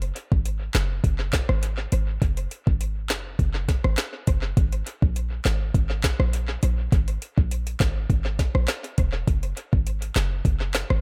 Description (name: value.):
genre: dancehall.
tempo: 102 BPM.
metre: 4/4.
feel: straight.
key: unclear.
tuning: A4 = 440 Hz.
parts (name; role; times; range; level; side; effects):
short 808-style bass; bass; 0.0-11.0 s; E1 to A#1; -27 LUFS; equal; none.
island pop drum kit; drums; 0.0-11.0 s; handclaps, hi-hat, kick drum, rim click, snare drum; -27 LUFS; equal; tape echo.
room: digital ambience.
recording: echo-heavy mix.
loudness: -24 LUFS.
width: mono.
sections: 0.0-9.3 A section; 9.3-11.0 B section.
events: none.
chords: none.